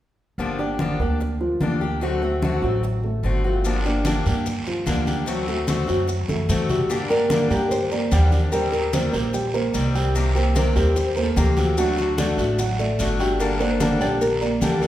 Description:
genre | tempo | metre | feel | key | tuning
latin, Cuban son and guajira | 148 BPM | 4/4 | straight | G harmonic minor | A4 = 440 Hz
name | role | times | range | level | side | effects
picked steel-string acoustic guitar | accompaniment | 0.4-14.9 s | C3 to A4 | -26 LUFS | left 3 dB | none
upright bass | bass | 0.4-14.9 s | G1 to G2 | -24 LUFS | equal | none
congas | percussion | 0.4-14.8 s | none | -28 LUFS | left 1 dB | none
dark grand piano | arpeggios | 0.6-14.9 s | F3 to G5 | -25 LUFS | right 2 dB | none
guiro | percussion | 3.6-14.9 s | none | -34 LUFS | right 3 dB | none
maracas | percussion | 3.6-14.9 s | none | -38 LUFS | left 5 dB | none
nylon-string guitar | melody | 6.9-14.8 s | F#4 to D5 | -26 LUFS | left 1 dB | none
room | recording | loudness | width
wet recital hall reverb, RT60 1.4 s | recorded in a church or concert hall | -19 LUFS | side -13 dB against mid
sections
0.4-6.9 A section; 6.9-14.9 B section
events
drum fill 6.3-6.9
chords
0.4 Gm7; 2.0 D7; 3.6 Gm7; 5.3 D7; 6.9 Gm; 8.5 Eb6; 10.2 Cm7; 11.8 D; 13.4 Gmadd9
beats
| 0.39 0.80 1.21 1.61 | 2.02 2.43 2.83 3.24 | 3.65 4.05 4.46 4.87 | 5.27 5.68 6.08 6.49 | 6.90 7.30 7.71 8.12 | 8.52 8.93 9.34 9.74 | 10.15 10.56 10.96 11.37 | 11.78 12.18 12.59 12.99 | 13.40 13.81 14.21 14.62

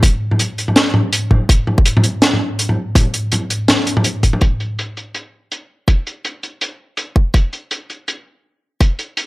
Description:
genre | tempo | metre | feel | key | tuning
drum and bass | 164 BPM | 4/4 | swing 58% on 16ths, half-time | none | none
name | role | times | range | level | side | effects
crunchy breakbeat drum kit | drums | 0.0-9.3 s | hi-hat, snare drum, toms | -15 LUFS | equal | low-pass filter on hats, low-pass filter on toms, low-pass filter on snare, low-pass filter on room
electronic kick drum | drums | 0.0-8.9 s | none | -12 LUFS | equal | none
room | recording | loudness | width
light reverb | none | -14 LUFS | side -20 dB against mid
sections
0.0-4.4 A section; 4.4-9.3 B section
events
none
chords
none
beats
| 0.03 0.39 0.76 1.12 | 1.49 1.86 2.22 2.59 | 2.95 3.32 3.69 4.05 | 4.42 4.78 5.15 5.51 | 5.88 6.25 6.61 6.98 | 7.34 7.71 8.08 8.44 | 8.81 9.17

